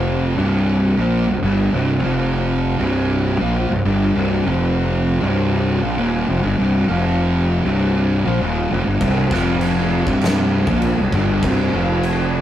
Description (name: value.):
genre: stoner and doom metal.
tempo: 99 BPM.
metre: 4/4.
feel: straight.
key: C minor.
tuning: A4 = 440 Hz.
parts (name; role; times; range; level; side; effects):
fuzz guitar; riff; 0.0-12.4 s; C2 to Bb3; -23 LUFS; left 5 dB; distortion.
thick fuzz guitar; riff; 0.0-12.4 s; C2 to Bb3; -18 LUFS; right 2 dB; distortion.
fuzz fingered electric bass; bass; 0.0-12.4 s; C1 to Bb1; -22 LUFS; equal; overdrive.
oversized low-tuned drum kit; drums; 9.0-12.2 s; crash cymbal, kick drum, snare drum; -23 LUFS; equal; none.
room: moderate studio reverb, RT60 0.5 s.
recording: rough rehearsal-room recording.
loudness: -16 LUFS.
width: side -11 dB against mid.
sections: 0.0-12.4 A section.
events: none.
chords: 0.4 C5; 2.0 F5; 2.8 C5; 4.5 F5; 5.2 Cm; 6.9 F5; 7.6 Cm; 9.3 F5; 10.1 C5; 11.7 F5.